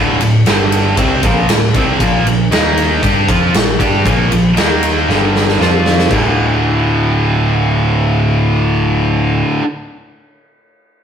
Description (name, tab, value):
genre	hard rock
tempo	117 BPM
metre	4/4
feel	straight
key	D phrygian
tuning	A4 = 440 Hz
part	high-gain distorted guitar	riff	0.0-9.6 s	D2 to G4	-14 LUFS	equal	distortion
part	overdriven picked electric bass	bass	0.0-9.4 s	D1 to G2	-16 LUFS	equal	none
part	big rock drum kit	drums	0.2-6.2 s	crash cymbal, kick drum, ride cymbal, snare drum	-15 LUFS	equal	none
room	moderate stone room reverb, RT60 1.3 s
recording	rough rehearsal-room recording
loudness	-11 LUFS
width	side -8 dB against mid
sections	0.0-6.1 A section; 6.1-10.2 B section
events	drum fill 5.1-6.1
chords	0.5 G5; 1.0 Dm; 2.0 Bb5; 2.5 Eb5; 3.0 Bb5; 4.6 Eb5; 5.1 G5; 5.6 F5; 6.1 D5